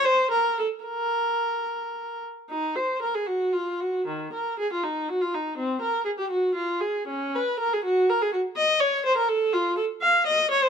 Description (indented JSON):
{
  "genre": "classical, baroque-style suite movement for unaccompanied viola",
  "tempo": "72-84 BPM (dotted quarters)",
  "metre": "6/8",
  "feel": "rubato",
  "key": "Bb minor",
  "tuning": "A4 = 440 Hz",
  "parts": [
    { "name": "warm viola", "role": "solo", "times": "0.0-10.7 s", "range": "Eb3 to F5", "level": "-22 LUFS", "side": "equal", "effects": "none" }
  ],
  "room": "moderate stone room reverb, RT60 0.9 s",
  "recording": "none",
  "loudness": "-23 LUFS",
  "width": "side -7 dB against mid",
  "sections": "0.0-2.5 A section; 2.5-10.7 A section",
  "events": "none",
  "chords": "none"
}